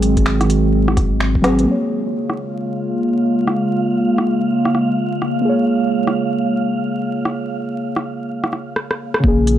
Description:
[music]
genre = future garage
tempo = 127 BPM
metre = 4/4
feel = swing 62% on 16ths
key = Bb minor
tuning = A4 = 440 Hz
[part]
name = muted felt-like synth keys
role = accompaniment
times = 0.0-9.6 s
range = Db3 to Db5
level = -21 LUFS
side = equal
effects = chorus, sidechain pumping, low-pass filter, tape echo
[part]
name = warbly tape-like pad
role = sustained chords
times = 0.0-9.6 s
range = Db3 to Gb4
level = -20 LUFS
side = equal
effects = chorus, built-in reverb, sidechain pumping
[part]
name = warm sub bass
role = bass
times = 0.0-1.7, 9.2-9.6 s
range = Ab1 to Bb1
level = -18 LUFS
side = equal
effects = tube saturation, sidechain pumping
[part]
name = organic electronic drum kit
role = drums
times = 0.0-9.6 s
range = finger snaps, hi-hat, rim click, snare drum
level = -21 LUFS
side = equal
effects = low-pass filter on hats, low-pass filter on snare
[part]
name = electronic kick drum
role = drums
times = 0.2-1.4, 9.2-9.4 s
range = none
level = -17 LUFS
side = equal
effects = overdrive
[part]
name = wind-like tuned noise texture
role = texture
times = 2.4-8.8 s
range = F5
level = -28 LUFS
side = right 5 dB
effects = built-in reverb
[sound]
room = little or no reverb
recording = dry, gritty hardware recording, vinyl crackle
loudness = -16 LUFS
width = side -11 dB against mid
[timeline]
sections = 0.0-1.7 A section; 1.7-9.2 B section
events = drum fill 1.4, 8.8-9.2; band accent 1.4; filter sweep on synth keys 1.7-9.2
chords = 0.0 Ab7; 1.7 Bbm7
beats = 0.26 0.73 1.21 | 1.68 2.15 2.62 3.10 | 3.57 4.04 4.51 4.99 | 5.46 5.93 6.40 6.88 | 7.35 7.82 8.29 8.77 | 9.24

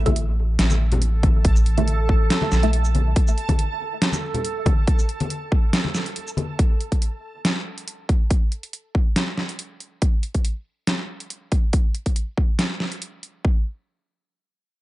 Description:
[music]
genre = deep dubstep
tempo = 140 BPM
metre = 4/4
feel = swing 53% on 16ths, half-time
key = unclear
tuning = A4 = 442 Hz
[part]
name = soft dub sub bass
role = bass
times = 0.0-3.1 s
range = A1 to Bb1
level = -19 LUFS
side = equal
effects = none
[part]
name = backwards swelling texture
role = texture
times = 0.0-6.6 s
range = A4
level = -30 LUFS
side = right 4 dB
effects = built-in reverb
[part]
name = filtered dub chord stab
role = stabs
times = 0.1-2.8 s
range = A3 to E5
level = -28 LUFS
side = right 1 dB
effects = phaser, dub echo
[part]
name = dubstep drum kit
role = drums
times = 0.1-13.3 s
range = hi-hat, shaker, snare drum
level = -24 LUFS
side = equal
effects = overdrive
[part]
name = electronic kick drum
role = drums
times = 0.1-13.5 s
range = none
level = -19 LUFS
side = equal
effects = overdrive
[part]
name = congas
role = percussion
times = 0.1-6.5 s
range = none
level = -28 LUFS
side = left 3 dB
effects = dub echo
[sound]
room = little or no reverb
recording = dark, warm production, nothing above 10.8 kHz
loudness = -19 LUFS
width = side -17 dB against mid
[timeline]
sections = 0.0-13.4 A section; 13.4-14.8 B section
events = filter sweep on synth stab 0.0-3.2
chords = 0.0 A5; 13.4 N.C.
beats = 0.16 0.59 1.02 | 1.45 1.87 2.30 2.73 | 3.16 3.59 4.02 4.45 | 4.87 5.30 5.73 6.16 | 6.59 7.02 7.45 7.87 | 8.30 8.73 9.16 9.59 | 10.02 10.45 10.87 11.30 | 11.73 12.16 12.59 13.02 | 13.45

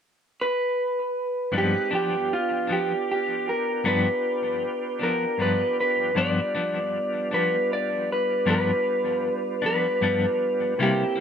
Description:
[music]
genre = blues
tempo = 52 BPM (dotted quarters)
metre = 12/8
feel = straight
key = G mixolydian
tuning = A4 = 440 Hz
[part]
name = electric guitar through a small old amp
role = melody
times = 0.4-11.2 s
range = F4 to D5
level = -24 LUFS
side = equal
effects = analog delay
[part]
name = clean electric guitar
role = accompaniment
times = 1.5-11.2 s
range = G2 to E4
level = -27 LUFS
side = left 3 dB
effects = tremolo, analog delay
[part]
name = tonewheel organ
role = sustained chords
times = 1.5-11.2 s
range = G3 to F#5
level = -32 LUFS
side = right 2 dB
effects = slow rotary speaker, chorus vibrato
[sound]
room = moderate spring reverb, RT60 1.4 s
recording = echo-heavy mix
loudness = -22 LUFS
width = side -8 dB against mid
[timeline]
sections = 0.0-1.5 A section; 1.5-11.2 B section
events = none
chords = 0.0 N.C.; 1.5 G7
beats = 0.37 | 1.53 2.69 3.84 5.00 | 6.16 7.32 8.47 9.63 | 10.79

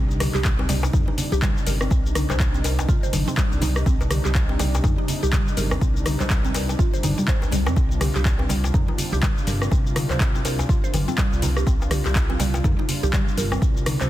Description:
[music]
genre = afro house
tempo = 123 BPM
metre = 4/4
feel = swing 59% on 16ths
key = C minor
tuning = A4 = 439 Hz
[part]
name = warm analog pad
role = sustained chords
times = 0.0-14.1 s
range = C3 to F4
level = -31 LUFS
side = equal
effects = wide subtle chorus, sidechain pumping
[part]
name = mallet-like synth pluck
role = arpeggios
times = 0.0-14.1 s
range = G3 to C5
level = -30 LUFS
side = right 1 dB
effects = chorus, phaser, sidechain pumping, digital delay
[part]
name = smooth synth bass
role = bass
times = 0.0-14.1 s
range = G1 to F2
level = -24 LUFS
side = equal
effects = sidechain pumping
[part]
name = afro-pop drum kit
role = drums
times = 0.1-14.1 s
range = handclaps, hi-hat, rim click, shaker, toms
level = -27 LUFS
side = left 1 dB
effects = overdrive
[part]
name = congas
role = percussion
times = 0.2-14.1 s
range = none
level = -32 LUFS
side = right 3 dB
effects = none
[part]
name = djembe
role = percussion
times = 0.2-14.1 s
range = none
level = -33 LUFS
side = left 2 dB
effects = none
[part]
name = electronic kick drum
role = drums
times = 0.4-13.7 s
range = none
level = -22 LUFS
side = equal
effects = none
[sound]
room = little or no reverb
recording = dense, heavily limited modern master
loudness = -19 LUFS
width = side -14 dB against mid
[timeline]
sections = 0.0-14.1 A section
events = none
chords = 0.0 Cm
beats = 0.45 0.94 1.42 | 1.91 2.40 2.89 3.37 | 3.86 4.35 4.84 5.33 | 5.81 6.30 6.79 7.28 | 7.76 8.25 8.74 9.23 | 9.72 10.20 10.69 11.18 | 11.67 12.15 12.64 13.13 | 13.62

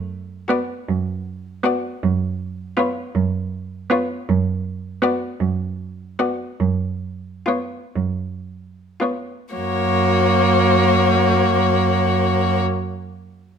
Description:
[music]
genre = classical, slow romantic movement for string quartet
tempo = 35-55 BPM (dotted quarters)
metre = 6/8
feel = rubato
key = unclear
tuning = A4 = 440 Hz
[part]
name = rich cello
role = bass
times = 0.0-12.6 s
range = F#2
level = -22 LUFS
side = right 5 dB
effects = none
[part]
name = clear violin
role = melody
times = 0.5-12.6 s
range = C#5 to D5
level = -23 LUFS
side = left 10 dB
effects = none
[part]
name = clear violin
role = second line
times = 0.5-12.6 s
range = E#4 to F#4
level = -23 LUFS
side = left 5 dB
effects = none
[part]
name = clear viola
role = accompaniment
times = 0.5-12.6 s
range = A#3 to B3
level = -22 LUFS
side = right 3 dB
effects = none
[sound]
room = moderate stone room reverb, RT60 1.2 s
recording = minimal, uncompressed stereo recording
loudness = -18 LUFS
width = side -7 dB against mid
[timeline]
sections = 0.0-9.6 A section; 9.6-12.6 B section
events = slowing down 3.1-9.6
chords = 0.0 Bm/F#; 9.6 F#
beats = 0.88 | 2.03 3.15 | 4.29 5.40 | 6.60 7.95 | 9.55 11.08

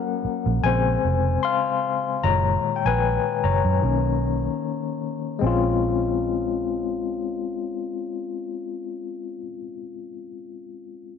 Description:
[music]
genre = lush 1970s-style soul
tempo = 75 BPM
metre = 4/4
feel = swing 54% on 16ths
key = Bb minor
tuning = A4 = 438 Hz
[part]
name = overdriven tine electric piano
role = accompaniment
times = 0.0-11.1 s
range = Bb2 to C6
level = -24 LUFS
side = left 8 dB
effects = fast tremolo
[part]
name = vintage muted fingered electric bass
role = bass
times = 0.2-9.4 s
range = F1 to Gb2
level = -24 LUFS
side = right 3 dB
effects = none
[sound]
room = moderate plate reverb, RT60 3.5 s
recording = none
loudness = -21 LUFS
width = side -7 dB against mid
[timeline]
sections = 0.0-5.4 A section; 5.4-8.6 B section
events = tine electric piano solo 0.0-5.4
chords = 0.0 Ab9sus4 (rootless); 0.6 Bbm9; 2.2 Gb6; 3.8 Bmaj9; 5.4 Bbm9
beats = 0.63 1.43 | 2.23 3.03 3.83 4.63 | 5.42 6.22 7.02 7.82

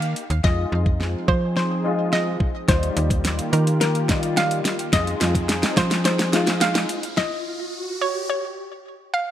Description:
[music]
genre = dance-pop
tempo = 107 BPM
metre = 4/4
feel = straight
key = F minor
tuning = A4 = 440 Hz
[part]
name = hollow square pluck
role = melody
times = 0.0-9.3 s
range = Bb4 to F5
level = -26 LUFS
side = right 1 dB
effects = chorus, digital delay
[part]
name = warm grand piano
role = accompaniment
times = 0.0-7.0 s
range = G3 to G4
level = -28 LUFS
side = left 4 dB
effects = ensemble chorus, sidechain pumping
[part]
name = slap-like FM bass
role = bass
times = 0.0-6.9 s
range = Eb2 to F3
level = -23 LUFS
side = equal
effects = sidechain pumping
[part]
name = smooth R&B drum kit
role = drums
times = 0.0-7.3 s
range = hi-hat, kick drum, snare drum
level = -22 LUFS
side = equal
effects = none
[part]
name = warm analog pad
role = sustained chords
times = 0.4-7.2 s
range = Eb3 to Ab4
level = -30 LUFS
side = right 1 dB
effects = chorus, sidechain pumping
[part]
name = riser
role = sound effects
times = 3.7-8.3 s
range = none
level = -33 LUFS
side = equal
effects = none
[sound]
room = light reverb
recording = bright 1980s-style digital production, high-pass filter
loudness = -19 LUFS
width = side -11 dB against mid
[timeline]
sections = 0.4-9.3 A section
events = build-up 0.4-9.3; drum fill 0.4-7.2; filter sweep 0.4-9.3; riser 3.7-9.3; stop 7.2-9.3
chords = 0.4 Fm7; 2.7 Ebadd9; 4.9 Fm7; 7.2 N.C.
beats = | 0.44 1.00 1.57 2.13 | 2.69 3.25 3.81 4.37 | 4.93 5.49 6.05 6.61 | 7.17 7.73 8.29 8.86

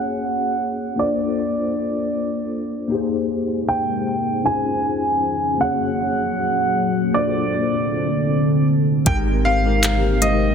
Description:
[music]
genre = contemporary R&B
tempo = 78 BPM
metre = 4/4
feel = straight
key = Ab major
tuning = A4 = 440 Hz
[part]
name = clear baby grand piano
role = melody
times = 0.0-10.5 s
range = D5 to Ab5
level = -22 LUFS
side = right 2 dB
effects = digital delay
[part]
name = mellow tine electric piano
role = accompaniment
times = 0.0-10.5 s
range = Ab3 to Db5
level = -23 LUFS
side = left 4 dB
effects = ensemble chorus
[part]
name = deep dark ambient pad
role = sustained chords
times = 3.7-10.5 s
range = C3 to G5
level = -22 LUFS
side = equal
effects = chorus, built-in reverb
[part]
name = fingerpicked old ladder-braced acoustic guitar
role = arpeggios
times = 9.1-10.5 s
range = Ab3 to Bb4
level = -29 LUFS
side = equal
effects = digital delay
[part]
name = clean 808-style bass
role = bass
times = 9.1-10.5 s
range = Ab1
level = -20 LUFS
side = right 1 dB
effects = none
[part]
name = smooth R&B drum kit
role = drums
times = 9.1-10.4 s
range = handclaps, hi-hat, kick drum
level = -21 LUFS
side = equal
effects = none
[sound]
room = light reverb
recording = dense, heavily limited modern master, low-pass filter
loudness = -18 LUFS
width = side -7 dB against mid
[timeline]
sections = 0.0-9.1 A section; 9.1-10.5 B section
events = filter sweep 0.0-9.1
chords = 0.0 Gbadd9; 1.0 Bbmaj9; 2.9 Abmaj9; 4.4 Dbmaj9; 5.6 Gbadd9; 7.1 Bbmaj9; 9.1 Abmaj9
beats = 0.60 1.37 2.14 | 2.91 3.68 4.45 5.22 | 5.99 6.75 7.52 8.29 | 9.06 9.83

